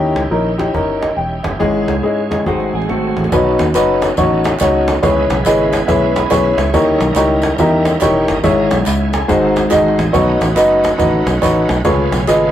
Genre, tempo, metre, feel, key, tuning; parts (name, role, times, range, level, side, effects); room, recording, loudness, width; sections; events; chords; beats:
uptempo gospel; 141 BPM; 4/4; swing 64% on 8ths; C# minor; A4 = 440 Hz
clear upright piano; accompaniment; 0.0-12.5 s; G#2 to B5; -13 LUFS; left 1 dB
bright tonewheel organ; sustained chords; 0.0-12.5 s; D#3 to G#5; -24 LUFS; right 4 dB; fast rotary speaker, overdrive, chorus vibrato
fingered electric bass; bass; 0.0-12.5 s; E1 to G#2; -20 LUFS; right 1 dB
cajon; drums; 0.2-12.3 s; -22 LUFS; right 1 dB
clean electric guitar; second line; 2.5-3.3 s; A3 to B#4; -23 LUFS; right 6 dB
tambourine and handclaps; percussion; 3.3-12.4 s; -28 LUFS; right 1 dB
moderate small room reverb, RT60 0.6 s; rough rehearsal-room recording, warm saturation; -12 LUFS; side -11 dB against mid
0.0-3.3 A section; 3.3-12.5 B section
drum fill 2.5-3.3; upright piano fill 5.9-6.7; tonewheel organ fill 5.9-6.7
0.0 D#7b9; 1.6 C#m/G#; 2.5 G#7b9; 3.3 B9; 5.0 C#m7; 6.7 D#7b9; 8.4 C#m/G#; 9.3 G#7b9; 10.1 B9; 11.9 C#7b13
0.32 0.75 1.18 | 1.61 2.04 2.47 2.90 | 3.32 3.75 4.18 4.61 | 5.03 5.46 5.88 6.31 | 6.74 7.16 7.59 8.01 | 8.44 8.87 9.29 9.72 | 10.14 10.57 11.00 11.43 | 11.85 12.28